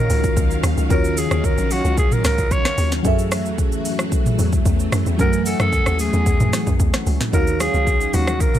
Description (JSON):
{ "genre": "amapiano", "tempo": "112 BPM", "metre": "4/4", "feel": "straight", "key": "unclear", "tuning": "A4 = 441 Hz", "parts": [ { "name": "growling alto saxophone", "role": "melody", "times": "0.0-8.6 s", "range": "Gb4 to Db5", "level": "-23 LUFS", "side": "equal", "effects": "ping-pong delay" }, { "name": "crystalline FM electric piano", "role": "accompaniment", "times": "0.0-8.6 s", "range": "Eb3 to Ab5", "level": "-26 LUFS", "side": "equal", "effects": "chorus, phaser" }, { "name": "string machine, cellos", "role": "sustained chords", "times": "0.0-8.6 s", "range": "Eb3 to Ab5", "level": "-26 LUFS", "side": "left 1 dB", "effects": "ensemble chorus" }, { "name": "hollow log drum bass", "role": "bass", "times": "0.1-8.5 s", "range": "Bb1 to Gb2", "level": "-21 LUFS", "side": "equal", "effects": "none" }, { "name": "afro-pop drum kit", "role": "drums", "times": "0.1-8.6 s", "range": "hi-hat, kick drum, rim click, shaker, snare drum, toms", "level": "-20 LUFS", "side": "equal", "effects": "none" }, { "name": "congas", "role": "percussion", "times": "7.3-8.5 s", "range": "none", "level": "-30 LUFS", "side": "right 4 dB", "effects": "none" } ], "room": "little or no reverb", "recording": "none", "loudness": "-16 LUFS", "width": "side -11 dB against mid", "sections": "0.0-8.6 A section", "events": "none", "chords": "0.0 Ebm9; 3.0 Gbm9; 7.3 Ebm9", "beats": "0.37 | 0.90 1.44 1.98 2.51 | 3.05 3.58 4.12 4.65 | 5.19 5.73 6.26 6.80 | 7.33 7.87 8.40" }